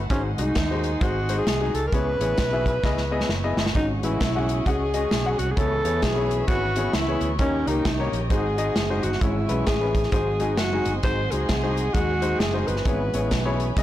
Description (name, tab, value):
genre	uptempo gospel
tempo	132 BPM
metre	4/4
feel	swing 61% on 8ths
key	C# minor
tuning	A4 = 438 Hz
part	warm studio string section	sustained chords	0.0-13.8 s	B4 to C#6	-37 LUFS	left 1 dB	none
part	fretless electric bass	bass	0.0-13.8 s	F#1 to E2	-27 LUFS	right 1 dB	tube saturation
part	warm alto saxophone	melody	0.1-13.6 s	C#4 to B#4	-26 LUFS	equal	none
part	clear grand piano	accompaniment	0.1-13.8 s	G#2 to F#5	-28 LUFS	left 4 dB	none
part	natural country drum kit	drums	0.1-13.8 s	hi-hat, kick drum, snare drum	-26 LUFS	equal	none
part	mellow tonewheel organ	sustained chords	3.7-13.8 s	C#3 to B4	-34 LUFS	right 2 dB	none
room	light reverb, studio ambience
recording	blown-out, overdriven recording, overdrive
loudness	-21 LUFS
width	side -13 dB against mid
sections	0.0-13.8 A section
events	drum fill 2.8-3.8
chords	0.1 G#7; 1.9 C#m7; 3.8 G#7sus4; 5.6 C#m7; 7.4 D#7; 8.3 G#7; 9.2 C#m/G#; 10.1 G#7; 12.9 C#m7/G#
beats	| 0.10 0.56 1.01 1.47 | 1.93 2.38 2.84 3.30 | 3.75 4.21 4.66 5.12 | 5.58 6.03 6.49 6.94 | 7.40 7.85 8.31 8.76 | 9.22 9.67 10.13 10.58 | 11.04 11.49 11.95 12.40 | 12.86 13.32 13.77